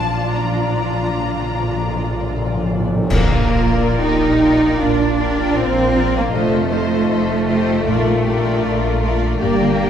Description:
classical, slow romantic movement for symphony orchestra; 63-81 BPM; 4/4; rubato; Bb major; A4 = 440 Hz
warm symphonic violin section; melody; 0.0-9.9 s; F4 to Bb5; -27 LUFS; left 4 dB
warm symphonic violin section; second line; 0.0-9.9 s; F4 to Eb5; -26 LUFS; left 3 dB
warm symphonic viola section; accompaniment; 0.0-9.9 s; F3 to G4; -26 LUFS; equal
concert harp; arpeggios; 0.0-9.9 s; F2 to C6; -24 LUFS; left 9 dB
rich symphonic cello section; bass; 0.0-9.9 s; A3 to F4; -19 LUFS; right 2 dB
rich symphonic double bass section; bass; 0.0-9.9 s; F1 to Bb1; -22 LUFS; right 3 dB
timpani; percussion; 0.0-3.0 s; Bb2; -25 LUFS; left 1 dB
clash cymbals and concert bass drum; percussion; 3.1-4.8 s; -24 LUFS; equal
moderate scoring stage reverb, RT60 1.8 s; dark, warm production; -15 LUFS; side -9 dB against mid
0.0-3.1 A section; 3.1-9.9 B section
timpani fill 0.0-3.1; band accent 3.1-4.0
0.0 Bb; 6.3 F7; 7.9 Bb

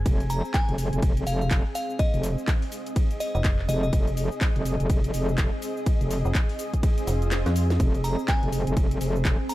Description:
bass house; 124 BPM; 4/4; swing 60% on 16ths; F minor; A4 = 439 Hz
metallic FM bass; bass; 0.0, 3.3-7.8 s; F1 to F2; -24 LUFS; equal; overdrive, sidechain pumping
granular cloud pad; texture; 0.0-9.5 s; C4 to Ab5; -33 LUFS; equal; built-in reverb, sidechain pumping
metallic wobble bass; bass; 0.1-9.4 s; F1; -26 LUFS; equal; chorus, tube saturation, sidechain pumping
electronic kick drum; drums; 0.1-9.4 s; -23 LUFS; equal
house drum kit; drums; 0.1-9.5 s; handclaps, hi-hat, ride cymbal, shaker, snare drum; -34 LUFS; equal
glassy synth bell; melody; 0.3-3.9, 8.0-9.5 s; Eb5 to Bb5; -33 LUFS; equal; chorus, dub echo
swell; sound effects; 7.0-7.8 s; -38 LUFS; right 1 dB
digital ambience; -22 LUFS; side -16 dB against mid
0.0-9.5 A section
swell 7.0-7.8; kick drops out 7.3-7.8; drum fill 7.3-7.8
0.0 Fm

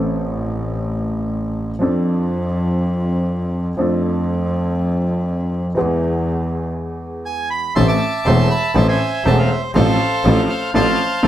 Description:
tango; 121 BPM; 4/4; rubato; A harmonic minor; A4 = 442 Hz
warm upright piano; accompaniment; 0.0-11.3 s; E1 to A4; -20 LUFS; left 1 dB
clear double bass; bass; 0.0-11.3 s; E1 to F2; -20 LUFS; equal
bandoneon; melody; 7.3-11.3 s; A4 to D6; -19 LUFS; right 1 dB
light reverb; -16 LUFS; side -12 dB against mid
0.0-7.8 A section; 7.8-11.3 A section
break 6.8-7.8
0.0 Am; 1.8 F6; 3.8 Dm/F; 5.8 E; 7.8 Am; 9.8 F/A

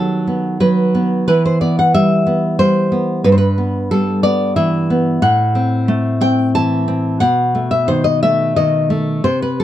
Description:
romantic piece for solo classical guitar; 90 BPM; 3/4; rubato; E minor; A4 = 440 Hz
nylon-string guitar; solo; 0.0-9.6 s; G2 to A5; -13 LUFS; equal
light reverb; -13 LUFS; side -12 dB against mid
0.0-9.6 A section
0.0 B/D#; 1.3 Em; 3.3 Em/G; 5.2 F#m7b5/A; 7.2 B7

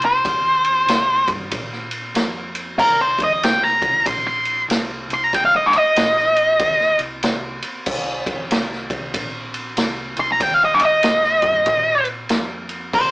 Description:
blues rock power trio and southern rock; 94 BPM; 4/4; swing 62% on 8ths; C minor; A4 = 439 Hz
octave-fuzz lead guitar; melody; 0.0-13.1 s; Bb4 to C6; -15 LUFS; equal; distortion
hollow-body short-scale picked electric bass; bass; 0.0-13.1 s; Bb1 to Bb2; -36 LUFS; equal
vintage drum kit; drums; 0.0-13.1 s; crash cymbal, kick drum, ride cymbal, snare drum; -23 LUFS; equal
moderate small room reverb, RT60 0.5 s; rough rehearsal-room recording, warm saturation, small speaker sound; -16 LUFS; side -23 dB against mid
0.0-13.1 A section
lead electric guitar solo 0.0-13.1
0.0 Cm

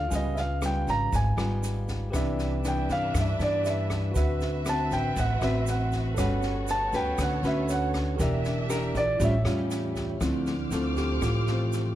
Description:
bossa nova; 119 BPM; 4/4; straight; A4 = 440 Hz
warm grand piano; melody; 0.0-9.4 s; D5 to Bb5; -29 LUFS; right 1 dB
bright tine electric piano; accompaniment; 0.0-11.9 s; F3 to G#5; -35 LUFS; right 3 dB; medium stereo tremolo
nylon-string guitar; accompaniment; 0.0-11.9 s; G2 to B4; -30 LUFS; left 1 dB
upright bass; bass; 0.0-11.9 s; E1 to G2; -29 LUFS; equal
open jazz drum kit; drums; 0.1-11.8 s; kick drum, rim click, snare drum; -35 LUFS; equal
egg shaker; percussion; 0.1-11.9 s; -44 LUFS; right 8 dB
warm studio string section; sustained chords; 2.1-11.9 s; B3 to F6; -38 LUFS; equal
light reverb; -24 LUFS; side -13 dB against mid
0.0-10.2 A section; 10.2-11.9 A section
grand piano solo 0.0-10.2; tine electric piano solo 10.2-11.9
0.1 C#7#11; 2.1 Cmaj9; 4.2 D13; 6.2 Gmaj9#11; 8.2 Em7b5; 9.2 A7b13; 10.2 Dm7

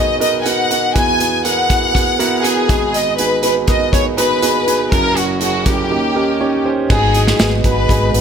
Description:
piano-driven pop; 121 BPM; 4/4; straight; A4 = 441 Hz
clear studio violin section; melody; 0.0-8.2 s; F#4 to G#5; -16 LUFS; left 2 dB
clear concert grand piano; accompaniment; 0.0-8.2 s; F#1 to C#5; -18 LUFS; right 4 dB
modern studio drum kit; drums; 0.2-8.2 s; crash cymbal, hi-hat, kick drum, snare drum; -18 LUFS; equal
lush unison pad; sustained chords; 6.9-8.2 s; F#3 to B3; -26 LUFS; right 2 dB; chorus
vintage muted fingered electric bass; bass; 6.9-8.2 s; G#1; -17 LUFS; equal
light reverb, small room ambience; -13 LUFS; side -7 dB against mid
0.0-6.9 A section; 6.9-8.2 B section
0.0 B; 1.0 Eadd9; 2.7 G#m7; 4.9 F#7; 5.9 D#7; 6.9 G#m7

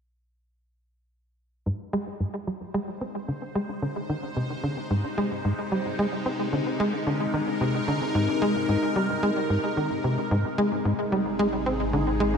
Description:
ambient, sequencer-driven space music; 111 BPM; 4/4; straight; Ab lydian; A4 = 440 Hz
evolving wavetable pad; sustained chords; 3.0-12.4 s; C3 to C5; -28 LUFS; left 1 dB; phaser, built-in reverb
tight sequencer bass; riff; 1.7-12.3 s; Ab2 to C4; -26 LUFS; equal; wide subtle chorus, tape echo
vibraphone with soft mallets; arpeggios; 10.3-12.4 s; Ab4 to Eb6; -48 LUFS; equal
analog drone; bass; 10.3-12.4 s; Ab1; -31 LUFS; equal; chorus, phaser
wet lush hall reverb, RT60 2.7 s; dreamy mix soaked in reverb, cassette tape, faint mains hum; -24 LUFS; side -6 dB against mid
1.7-10.3 A section; 10.3-12.4 B section
fade-in on ambient pad 1.7-10.3; filter sweep on analog synth bass 1.7-10.3
1.7 Ab

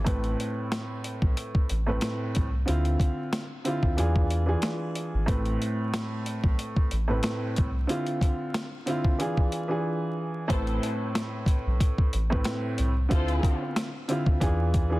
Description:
hip hop, boom-bap hip-hop; 92 BPM; 4/4; swing 55% on 16ths; A harmonic minor; A4 = 438 Hz
dark upright piano; accompaniment; 0.0-15.0 s; A2 to B4; -29 LUFS; right 1 dB; cassette tape, high-pass filter, low-pass filter
soft dub sub bass; bass; 0.0-15.0 s; G#1 to E2; -27 LUFS; equal
boom bap sampler-style drum kit; drums; 0.1-14.9 s; hi-hat, kick drum, snare drum; -27 LUFS; equal
dark studio string section; stabs; 10.5-13.5 s; E4 to C5; -37 LUFS; left 3 dB; high-pass filter, low-pass filter, ping-pong delay
light reverb, studio reverb; dense, heavily limited modern master, vinyl crackle; -25 LUFS; side -19 dB against mid
0.0-10.5 A section; 10.5-15.0 B section
break 9.8-10.5
0.1 Amadd9; 2.7 Dm9; 4.0 E7b9; 5.3 Amadd9; 7.9 Dm9; 9.2 E7b9; 10.5 Amadd9; 13.1 Dm9; 14.4 E7b9

